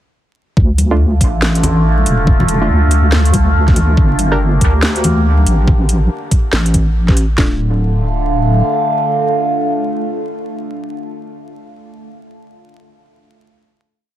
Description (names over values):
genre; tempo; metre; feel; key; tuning
deep dubstep; 141 BPM; 4/4; swing 62% on 16ths, half-time; D minor; A4 = 440 Hz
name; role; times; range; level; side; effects
overtone-sweeping drone; sustained chords; 1.0-10.7 s; D3 to G4; -18 LUFS; right 1 dB; chorus, built-in reverb, phaser
deep soft wobble bass; bass; 0.6-8.6 s; D1 to D2; -13 LUFS; equal; chorus
garage drum kit; drums; 0.6-7.5 s; kick drum, snare drum; -12 LUFS; equal; none
garage drum kit; drums; 0.8-7.3 s; hi-hat, snare drum; -19 LUFS; equal; none
congas; percussion; 0.8-5.4 s; none; -20 LUFS; left 2 dB; dub echo
filtered dub chord stab; stabs; 0.9-4.4, 7.4-10.7 s; A3 to Bb4; -23 LUFS; right 2 dB; chorus, cassette tape, dub echo
room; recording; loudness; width
digital ambience; dense, heavily limited modern master, vinyl crackle; -11 LUFS; side -12 dB against mid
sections
0.6-7.4 drop; 7.4-10.8 final chord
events
drop 0.6-7.4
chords
0.6 Dm; 4.0 Gm; 7.4 Dm